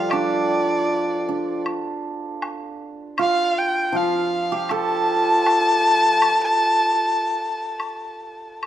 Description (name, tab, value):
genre	chinese traditional, Chinese chamber ensemble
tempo	78 BPM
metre	4/4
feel	rubato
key	unclear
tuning	A4 = 440 Hz
part	warm erhu	melody	0.0-8.6 s	D5 to A5	-20 LUFS	left 1 dB	none
part	hammered dulcimer	second line	0.0-8.6 s	D4 to A4	-25 LUFS	right 6 dB	none
part	hammered dulcimer	accompaniment	0.0-6.2 s	F3 to D5	-27 LUFS	left 2 dB	none
part	woodblock	percussion	0.1-8.7 s	none	-29 LUFS	left 1 dB	none
room	light reverb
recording	close, detailed microphones, lossy compression artefacts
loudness	-18 LUFS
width	side -11 dB against mid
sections	0.0-8.7 A section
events	none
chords	none